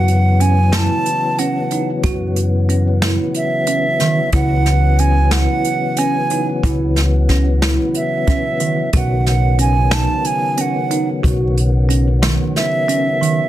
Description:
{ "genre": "progressive instrumental, band music in an uneven meter", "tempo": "183 BPM (eighths)", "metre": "7/8", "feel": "straight", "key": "unclear", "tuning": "A4 = 439 Hz", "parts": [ { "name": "bright baroque flute", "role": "melody", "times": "0.0-13.5 s", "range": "E5 to A5", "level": "-19 LUFS", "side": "right 4 dB", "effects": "plate reverb, digital delay" }, { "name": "tonewheel organ", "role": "accompaniment", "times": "0.0-13.5 s", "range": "C#3 to B3", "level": "-22 LUFS", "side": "left 4 dB", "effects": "overdrive, fast rotary speaker, plate reverb" }, { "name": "bell-like tine electric piano", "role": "arpeggios", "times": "0.0-13.4 s", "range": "D#3 to F#4", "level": "-22 LUFS", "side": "right 3 dB", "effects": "phaser, plate reverb" }, { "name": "upright bass", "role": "bass", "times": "0.0-12.4 s", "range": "B1 to F#2", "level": "-15 LUFS", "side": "equal", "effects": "none" }, { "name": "jazz brush drum kit", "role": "drums", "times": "0.1-13.4 s", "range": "hi-hat, kick drum, snare drum", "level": "-20 LUFS", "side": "equal", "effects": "soft clipping on snare" } ], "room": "moderate studio ambience, RT60 0.5 s", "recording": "dense, heavily limited modern master", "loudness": "-14 LUFS", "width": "side -13 dB against mid", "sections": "0.0-13.5 A section", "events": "none", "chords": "0.0 F#7(no3); 4.3 C#m7; 8.9 B" }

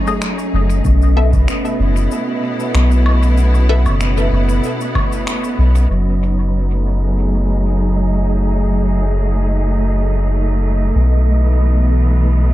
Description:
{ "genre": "ambient dub", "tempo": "95 BPM", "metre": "4/4", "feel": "swing 54% on 16ths", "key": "F# dorian", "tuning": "A4 = 441 Hz", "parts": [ { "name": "bright studio string section", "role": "sustained chords", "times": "0.0-12.5 s", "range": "B2 to G#4", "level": "-20 LUFS", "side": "right 2 dB", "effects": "low-pass filter" }, { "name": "filtered dub chord stab", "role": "stabs", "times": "0.0-5.1 s", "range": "A3 to E5", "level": "-25 LUFS", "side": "left 3 dB", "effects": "phaser, dub echo" }, { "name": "wind-like tuned noise texture", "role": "texture", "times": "0.0-12.5 s", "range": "C#4 to D#5", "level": "-26 LUFS", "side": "equal", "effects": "built-in reverb" }, { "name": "electronic shaker, finger snaps and woodblock", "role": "drums", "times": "0.1-5.9 s", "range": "none", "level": "-26 LUFS", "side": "left 1 dB", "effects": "overdrive, dub echo" }, { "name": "soft dub sub bass", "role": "bass", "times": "0.5-12.5 s", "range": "F#1 to B1", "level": "-14 LUFS", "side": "equal", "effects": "none" }, { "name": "electronic kick drum", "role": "drums", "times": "0.8-5.1 s", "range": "none", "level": "-21 LUFS", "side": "equal", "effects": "none" } ], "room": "little or no reverb", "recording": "dark, warm production", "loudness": "-13 LUFS", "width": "side -15 dB against mid", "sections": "0.0-5.9 A section; 5.9-12.5 B section", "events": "filter sweep on string section 5.9-12.5", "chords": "0.0 F#m69; 0.8 B7sus4; 5.9 F#m69; 11.0 B7sus4" }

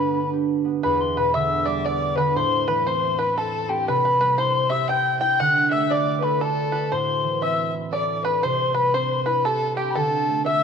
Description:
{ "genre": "celtic folk", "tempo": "118 BPM", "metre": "3/4", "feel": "swing 62% on 8ths", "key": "unclear", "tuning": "A4 = 437 Hz", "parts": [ { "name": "mellow wooden whistle", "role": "melody", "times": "0.0-10.6 s", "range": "G5 to G6", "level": "-23 LUFS", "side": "equal", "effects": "cassette tape" }, { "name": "dark fiddle", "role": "second line", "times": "0.0-10.6 s", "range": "G4 to G5", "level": "-25 LUFS", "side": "left 11 dB", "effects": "cassette tape" }, { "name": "concert harp", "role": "accompaniment", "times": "0.0-10.6 s", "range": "E2 to D5", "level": "-26 LUFS", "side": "right 7 dB", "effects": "cassette tape" }, { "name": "bluegrass banjo", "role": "second line", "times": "0.8-10.6 s", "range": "G4 to G5", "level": "-30 LUFS", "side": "right 7 dB", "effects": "cassette tape" } ], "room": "moderate lush hall reverb, RT60 2.6 s", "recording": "home recording on cassette", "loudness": "-19 LUFS", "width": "side -6 dB against mid", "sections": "0.8-10.6 A section", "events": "none", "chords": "0.0 G; 0.8 Em7; 2.4 Am; 3.9 C; 5.4 D; 6.9 Am; 8.4 C; 10.0 D" }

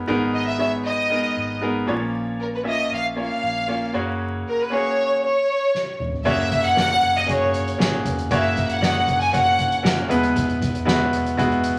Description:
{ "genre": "piano-driven pop", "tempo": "117 BPM", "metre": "4/4", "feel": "straight", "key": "unclear", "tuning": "A4 = 440 Hz", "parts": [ { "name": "bright concert grand piano", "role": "accompaniment", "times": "0.0-11.8 s", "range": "G#2 to E5", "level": "-25 LUFS", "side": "equal", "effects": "none" }, { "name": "vintage muted fingered electric bass", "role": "bass", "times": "0.0-11.8 s", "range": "E1 to A#1", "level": "-34 LUFS", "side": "equal", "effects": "none" }, { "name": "warm studio violin section", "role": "melody", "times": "0.3-9.8 s", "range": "A#4 to G#5", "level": "-23 LUFS", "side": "equal", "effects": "none" }, { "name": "soft-mallet drum kit", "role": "drums", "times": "5.7-11.8 s", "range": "crash cymbal, hi-hat, kick drum, snare drum, toms", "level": "-28 LUFS", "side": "equal", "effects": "none" } ], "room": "wet studio reverb, RT60 0.6 s", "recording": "vinyl crackle", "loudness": "-21 LUFS", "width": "mono", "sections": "0.0-6.3 A section; 6.3-11.8 B section", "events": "drum fill 5.7-6.3", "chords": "0.0 G#madd9; 1.9 A#m; 3.9 F#; 10.1 E" }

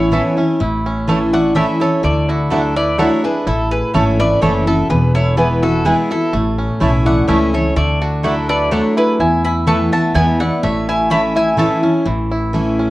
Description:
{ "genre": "bluegrass", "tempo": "126 BPM", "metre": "3/4", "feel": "straight", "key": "A major", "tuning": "A4 = 440 Hz", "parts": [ { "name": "mandolin", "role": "melody", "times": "0.0-11.9 s", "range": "F#4 to C#6", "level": "-20 LUFS", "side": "equal", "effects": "none" }, { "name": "picked steel-string acoustic guitar", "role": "accompaniment", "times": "0.0-12.9 s", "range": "E2 to E4", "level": "-16 LUFS", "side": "equal", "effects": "none" }, { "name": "bluegrass banjo", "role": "arpeggios", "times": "0.0-12.9 s", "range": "E3 to A4", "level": "-23 LUFS", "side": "right 2 dB", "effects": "none" }, { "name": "upright bass", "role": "bass", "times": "0.0-12.9 s", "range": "E1 to E2", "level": "-20 LUFS", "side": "equal", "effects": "none" }, { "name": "mandolin", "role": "stabs", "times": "0.1-11.7 s", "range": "A3 to B5", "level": "-22 LUFS", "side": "right 2 dB", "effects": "none" }, { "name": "lap resonator guitar", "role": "second line", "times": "1.3-11.9 s", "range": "D4 to A5", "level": "-24 LUFS", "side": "left 2 dB", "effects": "none" } ], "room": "moderate small room ambience, RT60 0.5 s", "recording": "worn, warbling old tape, cassette tape, warbly pitch drift", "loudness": "-13 LUFS", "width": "side -17 dB against mid", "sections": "0.6-12.1 A section", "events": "none", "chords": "0.0 Aadd9; 0.6 A; 2.0 Dadd9; 3.5 A; 4.9 E; 6.3 A; 7.8 Dadd9; 9.2 Esus4; 10.2 E; 10.6 A" }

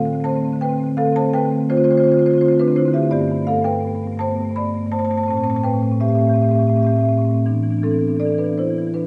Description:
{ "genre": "classical, contemporary piece for solo marimba", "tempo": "83 BPM", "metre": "3/4", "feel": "rubato", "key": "A minor", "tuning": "A4 = 444 Hz", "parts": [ { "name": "marimba with medium mallets", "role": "solo", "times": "0.0-9.1 s", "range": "G2 to B5", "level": "-18 LUFS", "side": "equal", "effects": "none" } ], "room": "wet recital hall reverb, RT60 1.7 s", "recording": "heard from further back in the room, nothing above 10.6 kHz", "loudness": "-18 LUFS", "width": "mono", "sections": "0.0-9.1 A section", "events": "none", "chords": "0.0 Dm7; 1.0 Fadd9/D; 3.1 Gadd9; 5.3 Am7; 7.5 E7sus4" }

